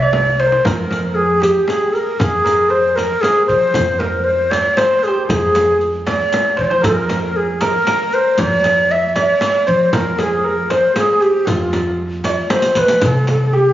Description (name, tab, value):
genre	Persian modal ensemble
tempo	78 BPM (dotted quarters)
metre	6/8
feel	straight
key	F avaz esfahan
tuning	A4 = 440 Hz
part	breathy ney	melody	0.0-13.7 s	F4 to E5	-15 LUFS	left 1 dB	none
part	barky tine electric piano	second line	0.0-13.7 s	F4 to D5-50c	-22 LUFS	right 4 dB	none
part	upright bass	bass	0.0-13.7 s	C2 to F3	-21 LUFS	right 1 dB	none
part	frame drum	percussion	0.1-13.4 s	none	-24 LUFS	equal	none
part	tombak	percussion	0.1-13.6 s	none	-29 LUFS	equal	none
part	riq	percussion	0.7-13.4 s	none	-28 LUFS	left 1 dB	none
room	wet scoring stage reverb, RT60 1.8 s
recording	recorded on a phone in the room, studio reverb, nothing above 7.5 kHz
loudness	-13 LUFS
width	side -13 dB against mid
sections	0.7-13.0 A section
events	drum fill 0.1-0.7, 6.3-6.8, 12.5-13.0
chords	none